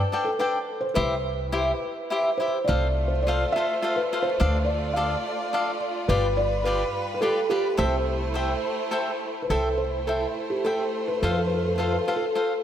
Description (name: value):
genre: mexican folk, mariachi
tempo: 106 BPM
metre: 3/4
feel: straight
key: C major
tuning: A4 = 442 Hz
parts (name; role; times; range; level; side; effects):
- felt-muted upright piano; melody; 0.0-12.6 s; G4 to F5; -26 LUFS; equal; diffuse ambient delay
- cavaquinho; accompaniment; 0.1-12.5 s; D4 to G5; -28 LUFS; left 1 dB; none
- upright bass; bass; 1.0-12.0 s; G1 to F2; -26 LUFS; equal; none
- clear studio violin section; sustained chords; 2.7-12.6 s; G3 to D5; -31 LUFS; right 1 dB; none
room: wet lush hall reverb, RT60 2.9 s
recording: dreamy mix soaked in reverb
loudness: -23 LUFS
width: side -10 dB against mid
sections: 0.0-9.5 A section; 9.5-12.6 A section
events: none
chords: 0.0 Gsus2; 1.0 C; 2.7 F/C; 4.4 Dm; 6.1 G7; 7.8 C6; 11.2 F